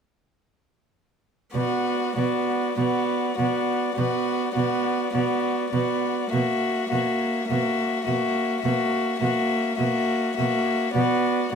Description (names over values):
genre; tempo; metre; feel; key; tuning
classical, slow romantic movement for string quartet; 51 BPM; 4/4; rubato; B minor; A4 = 440 Hz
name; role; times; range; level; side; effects
dark violin; melody; 1.5-11.5 s; D5 to E5; -28 LUFS; left 12 dB; none
dark violin; second line; 1.5-11.6 s; F#4; -27 LUFS; left 1 dB; none
warm viola; accompaniment; 1.5-11.5 s; A#3 to B3; -26 LUFS; right 3 dB; none
warm cello; bass; 1.5-11.6 s; B2; -26 LUFS; right 3 dB; none
room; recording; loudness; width
light reverb; minimal, uncompressed stereo recording; -22 LUFS; side -6 dB against mid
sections
1.5-11.6 A section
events
none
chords
1.5 Bm; 6.3 F#7/B; 11.0 Bm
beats
| 1.53 2.77 3.97 5.13 | 6.31 7.49 8.64 9.80 | 10.96